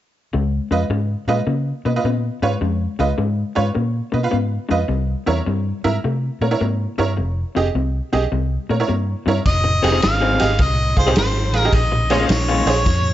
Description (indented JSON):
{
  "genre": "electric blues shuffle",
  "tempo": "105 BPM",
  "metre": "4/4",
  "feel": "swing 66% on 8ths",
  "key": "F minor",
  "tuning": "A4 = 440 Hz",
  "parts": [
    { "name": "electric guitar through a small old amp", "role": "riff", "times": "0.3-12.9 s", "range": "F2 to Ab4", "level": "-23 LUFS", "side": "left 5 dB", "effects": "none" },
    { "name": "vintage muted fingered electric bass", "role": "bass", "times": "0.3-13.1 s", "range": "F1 to Db3", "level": "-21 LUFS", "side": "equal", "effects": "none" },
    { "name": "tack piano", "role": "accompaniment", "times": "0.7-12.8 s", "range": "E4 to F5", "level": "-23 LUFS", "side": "right 5 dB", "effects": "none" },
    { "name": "mellow harmonica", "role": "melody", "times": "9.5-13.1 s", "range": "C5 to F5", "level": "-21 LUFS", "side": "equal", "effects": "slapback echo" },
    { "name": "raw garage drum kit", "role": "drums", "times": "9.5-13.0 s", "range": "kick drum, ride cymbal, snare drum", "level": "-20 LUFS", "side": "equal", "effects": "none" }
  ],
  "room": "light reverb, small room ambience",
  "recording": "nothing above 7.8 kHz",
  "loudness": "-17 LUFS",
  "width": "side -13 dB against mid",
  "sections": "0.3-9.5 A section; 9.5-13.1 B section",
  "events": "none",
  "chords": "0.3 Db7; 4.9 C7b9; 7.2 Fm9; 8.3 C7b9; 9.5 Fm7; 11.7 Bbm7"
}